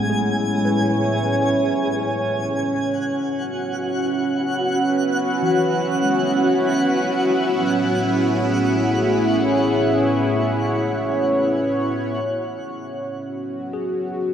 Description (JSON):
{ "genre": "ambient", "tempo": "76 BPM", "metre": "3/4", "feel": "straight", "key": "unclear", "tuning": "A4 = 439 Hz", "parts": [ { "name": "warm analog pad", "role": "sustained chords", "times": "0.0-14.3 s", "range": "A2 to C#5", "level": "-20 LUFS", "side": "equal", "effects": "chorus" }, { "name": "bright tine electric piano", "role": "arpeggios", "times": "0.0-14.3 s", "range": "E3 to G#5", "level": "-31 LUFS", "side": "left 1 dB", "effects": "medium stereo tremolo, tape echo" }, { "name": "twinkling granular texture", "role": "texture", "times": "0.0-12.2 s", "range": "F#4 to G#5", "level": "-26 LUFS", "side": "equal", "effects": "built-in reverb" }, { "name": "bowed-like drone", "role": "drone", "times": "3.5-14.3 s", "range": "B3 to E4", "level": "-29 LUFS", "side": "left 1 dB", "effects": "built-in reverb, phaser" } ], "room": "wet cathedral reverb, RT60 5.0 s", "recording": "in a vast, echoing space", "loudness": "-18 LUFS", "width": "side -9 dB against mid", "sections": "0.0-12.2 A section; 12.2-14.3 B section", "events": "fade-out on tine electric piano 0.0-12.2", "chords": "0.0 C#m/A; 2.8 E69; 7.5 C#m/A; 12.2 E69" }